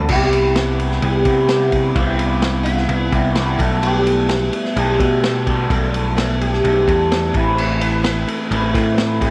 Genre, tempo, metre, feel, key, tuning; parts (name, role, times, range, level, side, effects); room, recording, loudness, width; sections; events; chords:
psychedelic rock; 128 BPM; 4/4; straight; A4 = 441 Hz
sitar; melody; 0.0-9.3 s; E4 to B4; -23 LUFS; equal; slapback echo
electric guitar through a small old amp; riff; 0.0-9.3 s; A2 to B4; -24 LUFS; equal; phaser
picked electric bass; bass; 0.0-9.3 s; A1 to C3; -22 LUFS; equal
vintage drum kit; drums; 0.1-9.3 s; crash cymbal, kick drum, ride cymbal, snare drum; -24 LUFS; equal
light reverb, small room ambience; -17 LUFS; mono
0.1-9.3 A section
0.1 Cmaj7; 3.6 Gadd9/B; 7.3 Amadd9